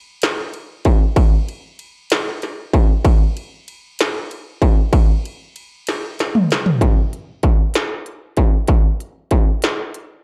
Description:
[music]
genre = gospel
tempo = 64 BPM (dotted quarters)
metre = 6/8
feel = straight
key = none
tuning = none
[part]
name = industrial drum kit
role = drums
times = 0.2-10.1 s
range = hi-hat, kick drum, ride cymbal, snare drum, toms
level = -17 LUFS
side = equal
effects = distortion
[sound]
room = light reverb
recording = dark, warm production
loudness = -18 LUFS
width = mono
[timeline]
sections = 0.0-6.8 A section; 6.8-8.7 B section; 8.7-10.2 C section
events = drum fill 5.9-6.8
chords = none

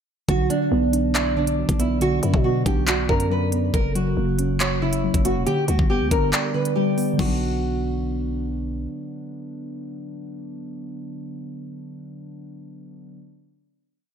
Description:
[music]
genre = hip hop, drill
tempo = 139 BPM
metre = 4/4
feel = half-time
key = B harmonic minor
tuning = A4 = 440 Hz
[part]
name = nylon-string guitar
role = melody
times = 0.3-8.4 s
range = D4 to B4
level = -25 LUFS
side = right 1 dB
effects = lush chorus, ping-pong delay
[part]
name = muted felt-like synth keys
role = accompaniment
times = 0.3-13.2 s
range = C#3 to D5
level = -26 LUFS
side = right 1 dB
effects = chorus
[part]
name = growling 808-style bass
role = bass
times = 0.3-8.9 s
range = E1 to B2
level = -25 LUFS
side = equal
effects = none
[part]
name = drill drum kit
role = drums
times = 0.3-7.3 s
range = crash cymbal, handclaps, hi-hat, kick drum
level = -24 LUFS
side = equal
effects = none
[sound]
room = light reverb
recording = none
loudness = -19 LUFS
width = side -7 dB against mid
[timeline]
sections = 0.3-7.2 verse; 7.2-10.6 final chord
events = kick muted 6.3-7.2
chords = 0.3 Bm; 3.7 F#; 5.5 G; 7.2 Bm

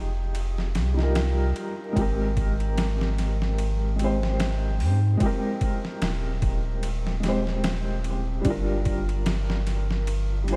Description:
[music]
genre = trip hop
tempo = 74 BPM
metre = 4/4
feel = swing 57% on 16ths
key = unclear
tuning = A4 = 440 Hz
[part]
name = felt-muted upright piano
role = accompaniment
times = 0.0-10.6 s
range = G3 to C5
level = -31 LUFS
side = equal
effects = tremolo, tape echo
[part]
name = warm sub bass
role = bass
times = 0.0-10.6 s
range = Eb1 to Ab2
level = -28 LUFS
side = equal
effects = none
[part]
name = boom bap sampler-style drum kit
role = drums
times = 0.3-10.6 s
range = hi-hat, kick drum, ride cymbal, snare drum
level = -33 LUFS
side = equal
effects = overdrive
[sound]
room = light reverb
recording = vinyl crackle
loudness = -26 LUFS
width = mono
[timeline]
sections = 0.0-10.6 A section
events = none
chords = 0.0 Fm9; 2.0 Abmaj9; 8.5 Gm7

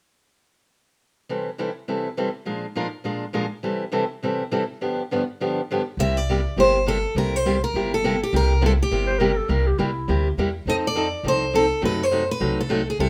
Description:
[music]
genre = acoustic string swing (jazz manouche)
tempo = 205 BPM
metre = 4/4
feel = swing 58% on 8ths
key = C major, C mixolydian from 6.0 s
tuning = A4 = 443 Hz
[part]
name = picked steel-string acoustic guitar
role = accompaniment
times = 1.3-13.1 s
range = G2 to Bb4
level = -26 LUFS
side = equal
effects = none
[part]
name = picked steel-string acoustic guitar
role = melody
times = 6.0-13.1 s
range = G4 to E5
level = -25 LUFS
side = equal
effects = none
[part]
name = upright bass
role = bass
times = 6.0-13.1 s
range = G1 to F#2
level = -27 LUFS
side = equal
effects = none
[part]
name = growling clarinet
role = second line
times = 9.1-10.4 s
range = E4 to C5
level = -28 LUFS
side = equal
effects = none
[sound]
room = moderate studio reverb, RT60 0.7 s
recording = none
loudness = -23 LUFS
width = mono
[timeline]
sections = 1.3-6.0 A section; 6.0-13.1 B section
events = none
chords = 1.3 C6; 2.5 Bb7; 3.6 C6; 4.8 G7; 6.0 C7; 10.7 F7; 11.8 F#dim7

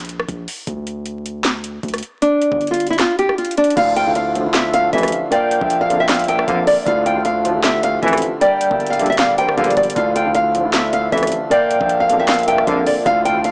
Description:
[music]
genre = hip hop, trap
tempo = 155 BPM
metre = 4/4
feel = half-time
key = D minor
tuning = A4 = 438 Hz
[part]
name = long sustained 808-style bass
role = bass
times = 0.0-13.5 s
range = G1 to D2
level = -30 LUFS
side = equal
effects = none
[part]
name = trap drum kit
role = drums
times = 0.0-13.5 s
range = crash cymbal, handclaps, hi-hat, kick drum, rim click, snare drum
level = -25 LUFS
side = equal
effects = none
[part]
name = nylon-string guitar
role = melody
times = 2.2-13.5 s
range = D4 to G5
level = -19 LUFS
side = equal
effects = none
[part]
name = dark concert grand piano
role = accompaniment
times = 3.8-13.5 s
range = D3 to G5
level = -25 LUFS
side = equal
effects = none
[part]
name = pedal harmonium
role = sustained chords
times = 3.8-13.5 s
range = D3 to G4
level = -28 LUFS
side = equal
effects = none
[part]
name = warm velvety synth lead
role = second line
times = 4.0-13.4 s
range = D5 to G5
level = -26 LUFS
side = equal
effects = chorus, analog delay
[part]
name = dark brass ensemble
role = stabs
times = 4.3-13.0 s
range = A1 to F3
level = -22 LUFS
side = equal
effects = none
[sound]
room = light reverb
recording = dry, gritty hardware recording, vinyl crackle, small speaker sound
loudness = -17 LUFS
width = mono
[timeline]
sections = 0.0-3.8 A section; 3.8-13.5 B section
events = break 0.0-3.8; kick muted 3.0-3.8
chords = 0.0 N.C.; 2.2 G5; 3.8 Dmadd9; 5.3 Bb; 6.9 Dmadd9; 8.4 Gm; 10.0 Dmadd9; 11.5 Bb

